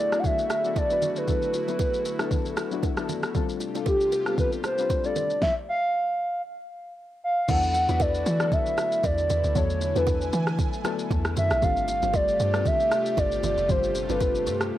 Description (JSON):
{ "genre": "amapiano", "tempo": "116 BPM", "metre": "4/4", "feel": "swing 55% on 16ths", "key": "unclear", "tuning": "A4 = 441 Hz", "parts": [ { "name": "hollow clarinet-like synth lead", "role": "melody", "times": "0.0-14.6 s", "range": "G4 to F#5", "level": "-25 LUFS", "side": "right 1 dB", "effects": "chorus, cassette tape, tape echo" }, { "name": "warm analog keys", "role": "accompaniment", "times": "0.0-14.8 s", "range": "F#3 to C5", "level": "-32 LUFS", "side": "left 9 dB", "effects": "chorus, cassette tape" }, { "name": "airy breathy pad", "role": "sustained chords", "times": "0.0-14.8 s", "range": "C3 to G#5", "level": "-34 LUFS", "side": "right 1 dB", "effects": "chorus, sidechain pumping, cassette tape" }, { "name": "smooth R&B drum kit", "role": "drums", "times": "0.1-14.7 s", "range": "crash cymbal, kick drum, rim click, shaker, snare drum", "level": "-28 LUFS", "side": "equal", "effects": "cassette tape" }, { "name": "congas and bongos", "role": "percussion", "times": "0.2-14.6 s", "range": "none", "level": "-36 LUFS", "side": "right 10 dB", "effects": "none" }, { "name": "deep log drum bass", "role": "bass", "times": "7.5-14.7 s", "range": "F1 to E3", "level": "-28 LUFS", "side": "equal", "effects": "none" } ], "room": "light reverb", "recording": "home recording on cassette", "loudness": "-22 LUFS", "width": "side -13 dB against mid", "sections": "0.0-7.5 A section; 7.5-14.8 B section", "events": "stop 5.4-7.5; drop 7.5-14.8", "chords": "0.0 E9sus4; 3.3 G9sus4; 7.5 E9sus4; 11.6 G9sus4" }